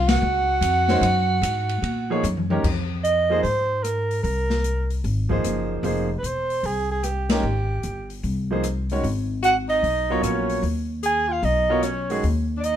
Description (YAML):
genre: modal jazz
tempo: 150 BPM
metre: 4/4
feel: swing 65% on 8ths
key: unclear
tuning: A4 = 440 Hz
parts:
  - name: breathy soprano saxophone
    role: melody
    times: 0.0-12.8 s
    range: G4 to Ab5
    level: -23 LUFS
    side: right 3 dB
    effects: none
  - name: clear tenor saxophone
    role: second line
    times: 0.0-2.2, 9.4-12.8 s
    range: Db4 to Ab4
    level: -28 LUFS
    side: left 5 dB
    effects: none
  - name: upright bass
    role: bass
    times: 0.0-12.8 s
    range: E1 to Bb2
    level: -25 LUFS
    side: left 1 dB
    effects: none
  - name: open jazz drum kit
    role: drums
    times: 0.1-12.8 s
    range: crash cymbal, hi-hat, kick drum, ride cymbal, rim click, snare drum, toms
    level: -29 LUFS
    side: left 2 dB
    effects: none
  - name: bright grand piano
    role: accompaniment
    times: 0.9-12.2 s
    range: Eb3 to Db5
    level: -25 LUFS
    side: right 1 dB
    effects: none
room: moderate studio reverb, RT60 0.9 s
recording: minimal, uncompressed stereo recording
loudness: -20 LUFS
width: side -10 dB against mid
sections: 0.0-2.6 A section; 2.6-12.8 B section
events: band accent 0.0, 7.2; drum fill 2.2-2.6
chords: 0.0 Ebm11; 2.6 Fm11; 9.0 Abm11